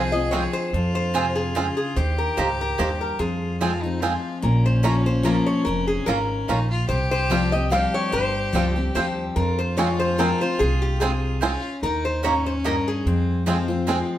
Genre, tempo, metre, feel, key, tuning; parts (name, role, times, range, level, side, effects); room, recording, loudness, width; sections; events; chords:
bluegrass; 146 BPM; 3/4; swing 54% on 8ths; F minor; A4 = 440 Hz
lap resonator guitar; melody; 0.0-14.1 s; G4 to F5; -26 LUFS; left 2 dB
clear fiddle; second line; 0.0-14.1 s; C4 to Ab4; -29 LUFS; left 2 dB
picked steel-string acoustic guitar; accompaniment; 0.0-14.2 s; F2 to G4; -26 LUFS; left 2 dB
upright bass; bass; 0.0-14.0 s; F1 to F2; -25 LUFS; right 1 dB
bluegrass banjo; melody; 0.3-14.0 s; Ab3 to F4; -29 LUFS; right 5 dB
mandolin; stabs; 0.3-14.0 s; Bb3 to Bb5; -28 LUFS; right 5 dB
wet studio reverb, RT60 0.8 s; heard from further back in the room; -20 LUFS; side -12 dB against mid
0.0-4.4 A section; 4.4-14.2 B section
0.0 Fm; 2.0 Eb; 3.2 Fm; 4.4 Bbm; 6.9 Csus4; 9.4 Fm; 11.8 Eb; 13.1 Fm